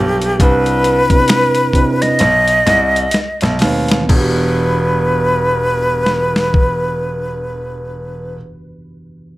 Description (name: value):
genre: R&B, neo-soul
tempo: 61-69 BPM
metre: 4/4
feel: swing 61% on 16ths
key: E minor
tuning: A4 = 439 Hz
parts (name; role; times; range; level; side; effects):
- breathy mellow silver concert flute; melody; 0.0-8.4 s; G4 to D#5; -15 LUFS; equal; none
- tine electric piano; accompaniment; 0.0-9.4 s; B2 to B4; -20 LUFS; right 2 dB; none
- clear grand piano; bass; 0.0-8.4 s; E1 to D#2; -19 LUFS; equal; none
- boom bap sampler-style drum kit; drums; 0.2-6.8 s; crash cymbal, finger snaps, hi-hat, kick drum, snare drum; -16 LUFS; left 1 dB; none
room: light reverb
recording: none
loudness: -12 LUFS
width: side -17 dB against mid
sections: 0.0-4.1 A section; 4.1-8.0 B section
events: slowing down 0.0-4.1; drum fill 2.2-4.1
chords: 0.4 Cmaj9; 2.2 B7b9; 4.1 Em9